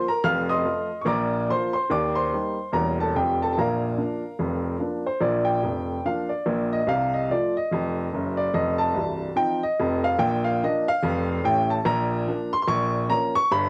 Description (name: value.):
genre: jazz, stride piano.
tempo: 145 BPM.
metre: 4/4.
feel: swing 61% on 8ths.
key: Bb major.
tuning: A4 = 441 Hz.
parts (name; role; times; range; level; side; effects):
clear upright piano; solo; 0.0-13.7 s; C1 to F6; -24 LUFS; equal; cassette tape.
room: moderate studio reverb, RT60 0.6 s.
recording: home recording on cassette.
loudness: -24 LUFS.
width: mono.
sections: 0.0-5.2 A section; 5.2-13.7 B section.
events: none.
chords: 0.2 F7; 1.1 Bb; 1.9 Eb; 2.7 Edim7; 3.1 F; 3.6 Bb; 6.9 F7/C; 8.5 F7; 10.2 Bb; 12.7 Bbm.